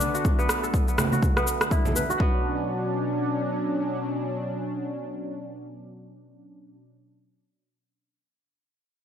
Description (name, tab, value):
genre	afro house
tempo	123 BPM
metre	4/4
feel	swing 58% on 16ths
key	B minor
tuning	A4 = 440 Hz
part	warm analog pad	sustained chords	0.0-6.8 s	B2 to D4	-29 LUFS	equal	chorus, sidechain pumping
part	kora	arpeggios	0.0-4.1 s	B3 to B4	-30 LUFS	equal	sidechain pumping, low-pass filter, digital delay
part	electronic cabasa and rim click	drums	0.0-2.2 s	none	-28 LUFS	equal	small room ambience
part	electronic kick drum	drums	0.2-2.3 s	none	-24 LUFS	equal	overdrive, small room ambience
part	congas	percussion	1.0-1.9 s	none	-29 LUFS	right 2 dB	none
room	light reverb, small room ambience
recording	none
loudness	-23 LUFS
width	side -9 dB against mid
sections	0.0-2.2 A section; 2.2-6.1 B section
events	filter sweep on kora 0.0-2.2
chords	0.0 Bm7; 2.2 Bm